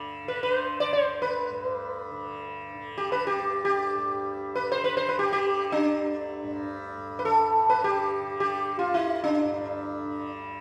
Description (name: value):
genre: indian classical, Hindustani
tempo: free time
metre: none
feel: none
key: unclear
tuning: A4 = 440 Hz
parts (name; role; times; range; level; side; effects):
- tanpura; drone; 0.0-10.6 s; D2 to D3; -39 LUFS; equal; none
- sitar; melody; 0.3-10.3 s; D4 to D5; -27 LUFS; equal; none
room: wet recital hall reverb, RT60 1.8 s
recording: none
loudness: -28 LUFS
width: mono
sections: 0.0-7.0 A section; 7.0-10.6 A section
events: none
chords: none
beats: free time